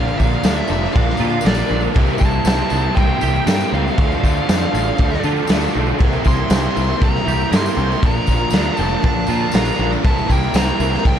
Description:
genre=rock, shoegaze and dream pop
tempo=119 BPM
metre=4/4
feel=straight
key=unclear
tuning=A4 = 440 Hz
part: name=fuzz lead guitar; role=melody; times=0.0-11.2 s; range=D5 to C6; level=-25 LUFS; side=equal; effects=distortion, slapback echo
part: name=phased string machine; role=sustained chords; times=0.0-11.2 s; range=A4 to D6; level=-28 LUFS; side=equal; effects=ensemble chorus, phaser
part: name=twangy electric guitar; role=arpeggios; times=0.0-11.2 s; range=E3 to G4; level=-29 LUFS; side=right 12 dB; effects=analog chorus, slapback echo
part: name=overdriven electric guitar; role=riff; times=0.0-11.2 s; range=Bb2 to Bb4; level=-24 LUFS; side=left 14 dB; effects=lush chorus
part: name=raw garage guitar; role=riff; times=0.0-11.2 s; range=Bb2 to E4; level=-24 LUFS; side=right 15 dB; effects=overdrive, reverse reverb
part: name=growling picked electric bass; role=bass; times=0.0-11.2 s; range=F1 to D3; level=-21 LUFS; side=equal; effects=overdrive
part: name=tambourine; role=percussion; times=0.1-11.1 s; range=none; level=-37 LUFS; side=left 9 dB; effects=none
part: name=raw garage drum kit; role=drums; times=0.2-11.2 s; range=crash cymbal, kick drum, snare drum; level=-18 LUFS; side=equal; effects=none
room=small room reverb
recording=dark, warm production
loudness=-14 LUFS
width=side -9 dB against mid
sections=0.0-11.2 A section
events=none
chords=0.0 Bbmaj7; 2.0 C7; 4.0 Dm7; 6.0 C7; 8.0 Bbmaj7; 10.0 C7

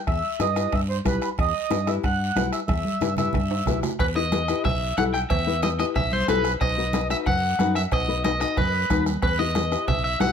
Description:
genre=latin, cumbia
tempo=184 BPM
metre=4/4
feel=straight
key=E harmonic minor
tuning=A4 = 440 Hz
part: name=mellow accordion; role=second line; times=0.1-3.8 s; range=B4 to F#5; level=-27 LUFS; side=right 3 dB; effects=none
part: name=fingered electric bass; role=bass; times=0.1-10.3 s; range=B1 to G2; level=-28 LUFS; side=equal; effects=none
part: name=bombo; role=percussion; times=0.1-10.3 s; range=none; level=-28 LUFS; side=equal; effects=none
part: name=guiro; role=percussion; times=0.1-10.3 s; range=none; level=-39 LUFS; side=right 6 dB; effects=none
part: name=timbales and cowbell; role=percussion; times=0.1-10.3 s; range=none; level=-34 LUFS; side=right 6 dB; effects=none
part: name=congas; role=percussion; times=0.2-10.3 s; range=none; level=-30 LUFS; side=right 3 dB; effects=none
part: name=nylon-string guitar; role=accompaniment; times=0.4-10.3 s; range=D#4 to B4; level=-27 LUFS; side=left 10 dB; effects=none
part: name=electric guitar at the edge of break-up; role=melody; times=4.0-10.3 s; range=B4 to G5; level=-25 LUFS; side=left 1 dB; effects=spring reverb
room=light reverb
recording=none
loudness=-21 LUFS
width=side -7 dB against mid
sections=0.0-4.0 A section; 4.0-10.3 B section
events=accordion solo 0.0-4.0; drum fill 2.7-4.0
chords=0.0 Em; 6.6 B; 9.2 Em

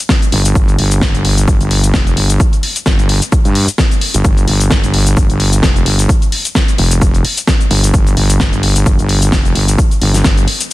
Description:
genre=bass house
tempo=130 BPM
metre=4/4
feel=swing 56% on 16ths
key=unclear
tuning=A4 = 439 Hz
part: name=big-room dance drum kit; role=drums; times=0.1-10.7 s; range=cabasa, hi-hat, snare drum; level=-16 LUFS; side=left 1 dB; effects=none
part: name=electronic kick drum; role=drums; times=0.1-10.3 s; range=none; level=-13 LUFS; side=equal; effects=overdrive
part: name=wobble bass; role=bass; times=0.3-10.5 s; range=F1 to G2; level=-12 LUFS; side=equal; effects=chorus, overdrive, sidechain pumping
room=little or no reverb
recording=dense, heavily limited modern master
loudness=-9 LUFS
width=side -17 dB against mid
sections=0.0-10.7 A section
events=none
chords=none

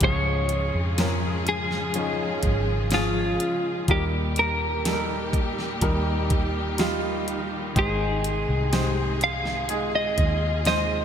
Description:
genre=pop ballad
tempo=62 BPM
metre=4/4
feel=straight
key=Ab major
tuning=A4 = 440 Hz
part: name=clean electric guitar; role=melody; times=0.0-11.0 s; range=F4 to F5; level=-26 LUFS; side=equal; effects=analog chorus
part: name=clear concert grand piano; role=accompaniment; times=0.0-11.0 s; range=Ab2 to C5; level=-29 LUFS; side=equal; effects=wide subtle chorus
part: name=warm studio string section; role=sustained chords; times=0.0-11.0 s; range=Bb2 to Ab4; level=-32 LUFS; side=left 1 dB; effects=none
part: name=vintage muted fingered electric bass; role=bass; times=0.0-11.0 s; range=Ab1 to F2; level=-28 LUFS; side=equal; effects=none
part: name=smooth R&B drum kit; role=drums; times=0.0-10.9 s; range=hi-hat, kick drum, snare drum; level=-27 LUFS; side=equal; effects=gated reverb
room=moderate lush hall reverb, RT60 3.0 s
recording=bright 1980s-style digital production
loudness=-22 LUFS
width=side -8 dB against mid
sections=0.0-11.0 A section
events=none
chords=0.0 Db; 3.9 Eb; 7.8 Ab

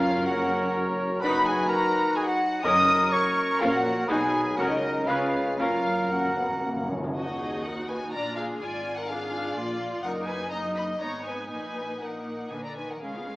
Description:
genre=quick classical-period movement for symphony orchestra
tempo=112-128 BPM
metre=3/4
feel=rubato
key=F# major, Eb minor from 7.2 s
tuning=A4 = 439 Hz
part: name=rich chamber violin section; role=melody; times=0.0-13.4 s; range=D5 to D#6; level=-36 LUFS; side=left 1 dB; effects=none
part: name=bright clarinet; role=second line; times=0.0-6.9 s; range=D#4 to D#5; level=-31 LUFS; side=equal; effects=none
part: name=mellow hollow silver concert flute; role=second line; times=0.0-6.9 s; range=D#5 to D#6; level=-27 LUFS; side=equal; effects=none
part: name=rich chamber violin section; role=second line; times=0.0-13.4 s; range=F4 to D#6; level=-34 LUFS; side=left 1 dB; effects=none
part: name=warm cor anglais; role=second line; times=0.0-6.9 s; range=G#4 to C#5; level=-33 LUFS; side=equal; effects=none
part: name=rich chamber viola section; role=accompaniment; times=0.0-13.4 s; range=Ab3 to B4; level=-33 LUFS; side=equal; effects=none
part: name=warm French horn section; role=sustained chords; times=0.0-7.0 s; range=E#3 to D#4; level=-32 LUFS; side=left 1 dB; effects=none
part: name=mellow trumpet section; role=stabs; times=0.0-6.9 s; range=F#4 to B4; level=-30 LUFS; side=right 1 dB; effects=none
part: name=dark chamber double bass section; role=bass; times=0.0-13.4 s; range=F#1 to Eb2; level=-41 LUFS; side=right 1 dB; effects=none
part: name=rich chamber cello section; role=bass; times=0.0-13.4 s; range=Eb2 to Eb3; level=-36 LUFS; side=equal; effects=none
part: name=timpani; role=percussion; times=0.0-0.5, 2.6-3.3, 5.6-7.1 s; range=F#2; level=-36 LUFS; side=equal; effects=none
room=wet recital hall reverb, RT60 1.6 s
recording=small speaker sound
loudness=-24 LUFS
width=side -20 dB against mid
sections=0.0-7.2 A section; 7.2-13.4 B section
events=timpani fill 5.6-7.2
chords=0.0 F#; 1.2 B/F#; 2.6 F#; 3.6 A#m; 4.1 B; 4.6 F#/C#; 5.1 C#7; 5.6 F#; 7.2 Ebm; 8.1 Bb; 8.6 Bb7/Ab; 10.0 Ebm/Gb; 11.0 Abm; 11.5 Ebm/Bb; 12.5 Bb

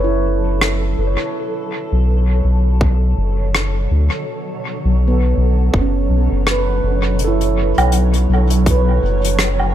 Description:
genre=ambient dub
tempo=82 BPM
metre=4/4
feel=swing 58% on 16ths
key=B minor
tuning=A4 = 441 Hz
part: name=granular cloud pad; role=sustained chords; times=0.0-9.7 s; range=B2 to C#5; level=-24 LUFS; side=equal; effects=built-in reverb
part: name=handpan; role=arpeggios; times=0.0-9.7 s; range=B3 to C#5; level=-22 LUFS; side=right 4 dB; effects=analog delay
part: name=soft dub sub bass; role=bass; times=0.0-9.7 s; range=F#1 to D2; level=-15 LUFS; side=equal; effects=tube saturation
part: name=soft brush drum kit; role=drums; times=0.6-9.7 s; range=hi-hat, rim click, woodblock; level=-20 LUFS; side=equal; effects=dub echo
part: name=electronic kick drum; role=drums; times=2.8-8.8 s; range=none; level=-19 LUFS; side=equal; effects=none
room=small room ambience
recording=echo-heavy mix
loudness=-14 LUFS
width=side -11 dB against mid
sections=0.0-9.7 A section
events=fade-in on ambient pad 0.0-9.7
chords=0.0 Bm9

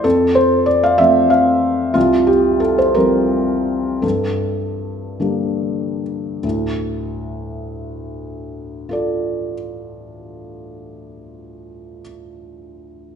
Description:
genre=neoclassical minimalist piano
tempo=47-63 BPM (dotted quarters)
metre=6/8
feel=rubato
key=D minor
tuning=A4 = 441 Hz
part: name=felt-muted upright piano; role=solo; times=0.0-13.2 s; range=C2 to F5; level=-16 LUFS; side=equal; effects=none
room=wet recital hall reverb, RT60 1.5 s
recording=recorded in a church or concert hall, nothing above 10.9 kHz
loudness=-15 LUFS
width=side -7 dB against mid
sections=0.0-6.4 A section; 6.4-11.3 B section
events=slowing down 1.0-6.4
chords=0.0 F; 2.0 Csus4; 4.0 Gmadd9; 6.4 Dm

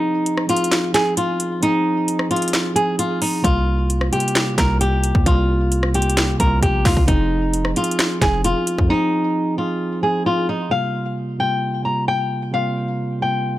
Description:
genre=hip hop, trap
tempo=132 BPM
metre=4/4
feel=half-time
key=F minor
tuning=A4 = 441 Hz
part: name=flamenco guitar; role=melody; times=0.0-13.6 s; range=Eb4 to Bb5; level=-20 LUFS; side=left 1 dB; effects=low-pass filter, digital delay
part: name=mellow tine electric piano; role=accompaniment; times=0.0-13.6 s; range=C3 to Ab4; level=-23 LUFS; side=right 2 dB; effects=low-pass filter
part: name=trap drum kit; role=drums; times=0.3-8.9 s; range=handclaps, hi-hat, kick drum, rim click, snare drum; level=-20 LUFS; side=equal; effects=none
part: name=hard-hitting 808-style bass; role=bass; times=3.4-8.9 s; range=F1 to F2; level=-20 LUFS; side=equal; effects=none
room=digital ambience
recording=none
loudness=-17 LUFS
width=side -15 dB against mid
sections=0.0-10.7 A section; 10.7-13.6 B section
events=break 0.0-3.4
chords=0.0 Fm7; 3.4 C7sus4; 7.1 Fm7; 10.7 C7sus4

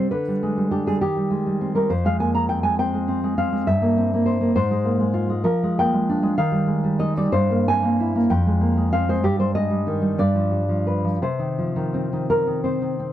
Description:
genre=romantic piece for solo classical guitar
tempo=55-70 BPM (dotted quarters)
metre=6/8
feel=rubato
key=C minor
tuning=A4 = 439 Hz
part: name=nylon-string guitar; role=solo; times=0.0-13.1 s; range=F2 to Bb5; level=-19 LUFS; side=equal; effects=none
room=light reverb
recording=dry, close 1970s-style studio recording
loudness=-19 LUFS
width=side -12 dB against mid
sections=0.0-13.1 A section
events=none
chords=0.1 G/D; 1.0 Cm/Eb; 1.9 Fm; 3.7 C7/G; 4.5 Fm/Ab; 5.5 Bb7/F; 6.4 Eb; 7.3 C7/G; 8.3 Fm; 9.2 Abmaj7/G; 10.2 G7; 11.2 Cm

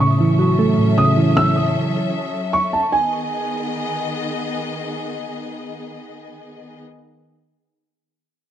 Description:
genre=hip hop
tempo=154 BPM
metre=4/4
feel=half-time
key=G# phrygian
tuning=A4 = 440 Hz
part: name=dark concert grand piano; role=melody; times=0.0-4.1 s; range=G#5 to E6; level=-21 LUFS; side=right 2 dB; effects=tape echo
part: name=soft electric-piano-like synth keys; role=accompaniment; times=0.0-2.1 s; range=A2 to A3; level=-15 LUFS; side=right 1 dB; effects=chorus
part: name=clear symphonic string section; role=sustained chords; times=0.0-6.8 s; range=D#3 to E5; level=-25 LUFS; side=left 3 dB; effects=none
room=light reverb, digital ambience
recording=nothing above 10.9 kHz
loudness=-17 LUFS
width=side -10 dB against mid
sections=0.0-2.9 A section; 2.9-6.0 B section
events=none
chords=0.0 A6; 2.9 G#m

